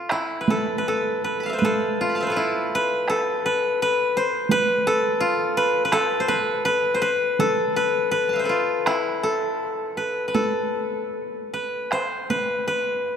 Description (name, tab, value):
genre	japanese traditional, Japanese chamber music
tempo	76-88 BPM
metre	4/4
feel	rubato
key	A hirajoshi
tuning	A4 = 440 Hz
part	koto	melody	0.0-13.2 s	E4 to B5	-21 LUFS	left 1 dB	none
part	taiko ensemble	percussion	0.1-12.5 s	none	-29 LUFS	right 3 dB	none
room	wet cathedral reverb, RT60 4.1 s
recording	none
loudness	-20 LUFS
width	side -8 dB against mid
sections	0.1-13.2 A section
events	none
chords	none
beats	| 0.10 0.86 1.62 2.36 | 3.08 3.80 4.49 5.19 | 5.91 6.65 7.38 8.12 | 8.86 9.60 10.36 11.14 | 11.91 12.68